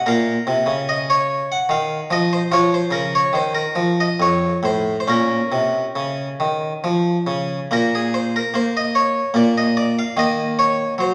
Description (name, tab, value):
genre	classical, baroque-style suite movement for harpsichord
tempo	67-75 BPM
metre	3/4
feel	rubato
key	Bb minor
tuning	A4 = 437 Hz
part	harpsichord	solo	0.0-11.1 s	F2 to Gb5	-19 LUFS	equal	none
room	wet recital hall reverb, RT60 1.4 s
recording	none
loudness	-19 LUFS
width	mono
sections	0.0-7.7 A section; 7.7-11.1 B section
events	none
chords	0.1 Bbm; 1.7 Ebsus2; 2.5 Dbmaj13; 4.2 F; 5.1 Bbm; 7.7 N.C.; 10.2 Ebm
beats	| 0.06 0.87 1.69 | 2.50 3.32 4.18 | 5.06 5.95 6.83 | 7.70 8.53 9.35 | 10.16 10.97